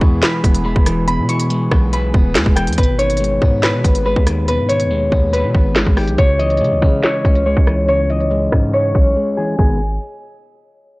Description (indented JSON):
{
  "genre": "hip hop, drill",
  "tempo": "141 BPM",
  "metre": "4/4",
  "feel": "half-time",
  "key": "G# harmonic minor",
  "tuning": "A4 = 440 Hz",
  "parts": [
    { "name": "Celtic harp", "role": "melody", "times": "0.0-9.8 s", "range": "G4 to C#6", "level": "-19 LUFS", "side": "left 1 dB", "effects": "low-pass filter, analog delay" },
    { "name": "electric guitar at the edge of break-up", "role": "accompaniment", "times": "0.0-9.8 s", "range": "B2 to C#5", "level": "-20 LUFS", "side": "left 1 dB", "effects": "low-pass filter" },
    { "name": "warm analog pad", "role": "sustained chords", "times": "0.0-2.7 s", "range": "E3 to G#4", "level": "-28 LUFS", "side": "left 1 dB", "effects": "chorus" },
    { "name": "distorted 808-style bass", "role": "bass", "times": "0.0-10.0 s", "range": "D#1 to C#3", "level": "-20 LUFS", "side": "equal", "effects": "distortion" },
    { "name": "drill drum kit", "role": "drums", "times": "0.0-9.7 s", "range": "crash cymbal, handclaps, hi-hat, kick drum, rim click, snare drum", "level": "-14 LUFS", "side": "equal", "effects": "vintage 12-bit sampler grit" }
  ],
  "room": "digital ambience",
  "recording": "dry, gritty hardware recording, low-pass filter",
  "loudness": "-13 LUFS",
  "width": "side -22 dB against mid",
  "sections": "0.0-2.8 A section; 2.8-9.6 B section; 9.6-11.0 C section",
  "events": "filter sweep 2.8-9.6; break 9.2-9.6",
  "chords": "0.0 E; 2.8 G#m; 6.2 C#m; 9.6 G#m"
}